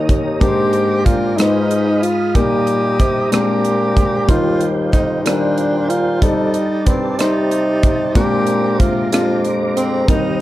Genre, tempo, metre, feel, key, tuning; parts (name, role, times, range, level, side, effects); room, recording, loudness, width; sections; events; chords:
slow gospel; 62 BPM (dotted quarters); 6/8; straight; Eb major; A4 = 440 Hz
breathy tenor saxophone; melody; 0.0-10.4 s; C4 to G4; -19 LUFS; right 1 dB; tape echo
warm grand piano; accompaniment; 0.0-10.4 s; Ab2 to D5; -20 LUFS; left 2 dB
tonewheel organ; sustained chords; 0.0-10.4 s; Ab3 to Eb6; -26 LUFS; right 2 dB; slow rotary speaker, chorus vibrato
mellow bassoon; bass; 0.0-10.4 s; Eb2 to C3; -21 LUFS; equal
crisp fusion drum kit; drums; 0.1-10.2 s; hi-hat, kick drum, rim click; -18 LUFS; equal
small room ambience; dark, warm production; -13 LUFS; side -15 dB against mid
0.0-10.4 A section
0.4 Abmaj9#11; 1.4 Abm6; 2.4 Eb/Bb; 3.3 Bb9; 4.3 Eb69; 6.2 F13; 8.2 Bb9